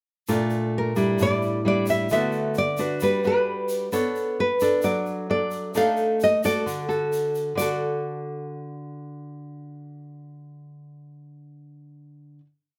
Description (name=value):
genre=bossa nova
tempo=132 BPM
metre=4/4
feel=straight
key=D major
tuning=A4 = 440 Hz
part: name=nylon-string guitar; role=accompaniment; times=0.3-12.5 s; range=A2 to C#5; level=-28 LUFS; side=equal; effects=none
part: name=tube shaker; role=percussion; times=0.3-7.7 s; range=none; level=-43 LUFS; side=equal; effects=none
part: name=nylon-string guitar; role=melody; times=0.8-12.4 s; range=Bb4 to F5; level=-26 LUFS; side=equal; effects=none
room=light reverb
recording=none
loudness=-24 LUFS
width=mono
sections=0.3-7.6 A section; 7.6-11.2 final chord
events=none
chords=0.3 Bbmaj7; 1.2 A7sus4; 2.1 D6; 3.0 Gmaj7; 3.9 Bm9; 5.7 F6/A; 6.7 D